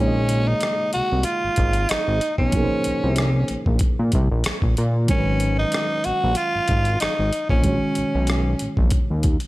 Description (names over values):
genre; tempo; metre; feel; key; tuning
R&B, neo-soul; 94 BPM; 4/4; swing 53% on 16ths; Bb minor; A4 = 438 Hz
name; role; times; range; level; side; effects
growling tenor saxophone; melody; 0.0-8.7 s; Db4 to Gb4; -23 LUFS; equal; slapback echo
reed electric piano; accompaniment; 0.0-9.5 s; Eb3 to Eb5; -27 LUFS; right 2 dB; none
fat analog bass; bass; 0.0-9.4 s; Ab1 to Bb2; -21 LUFS; equal; none
boom bap sampler-style drum kit; drums; 0.3-9.5 s; hi-hat, kick drum, rim click; -23 LUFS; equal; none
room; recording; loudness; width
little or no reverb; none; -18 LUFS; side -18 dB against mid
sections
0.0-9.5 A section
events
none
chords
0.0 Bbm9; 5.1 Abm9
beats
0.62 1.26 1.90 | 2.53 3.17 3.81 4.45 | 5.09 5.72 6.36 7.00 | 7.64 8.28 8.92